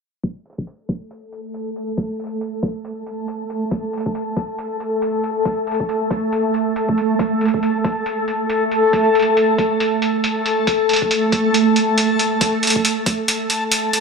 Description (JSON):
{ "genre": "deep dubstep", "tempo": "138 BPM", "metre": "4/4", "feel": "swing 59% on 16ths, half-time", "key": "unclear", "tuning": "A4 = 440 Hz", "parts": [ { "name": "electronic hi-hat", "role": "drums", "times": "0.2-14.0 s", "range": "none", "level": "-22 LUFS", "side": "right 1 dB", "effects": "low-pass filter on hats, small room ambience" }, { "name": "electronic kick drum", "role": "drums", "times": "0.2-13.2 s", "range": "none", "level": "-23 LUFS", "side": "left 1 dB", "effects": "high-pass filter on kick, small room ambience" }, { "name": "backwards swelling texture", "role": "texture", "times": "1.4-14.0 s", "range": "A3 to A4", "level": "-18 LUFS", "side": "equal", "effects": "built-in reverb" } ], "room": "moderate huge ambient reverb, RT60 5.0 s", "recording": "low-pass filter", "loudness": "-17 LUFS", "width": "side -4 dB against mid", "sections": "0.2-14.0 A section", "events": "filter sweep on drum 0.2-14.0; filter sweep 0.2-14.0; kick drops out 13.7", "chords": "none", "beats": "| 0.24 0.67 1.11 1.54 | 1.98 2.41 2.85 3.28 | 3.72 4.15 4.58 5.02 | 5.46 5.89 6.32 6.76 | 7.19 7.63 8.06 8.50 | 8.93 9.37 9.80 10.24 | 10.67 11.11 11.54 11.98 | 12.41 12.85 13.28 13.72" }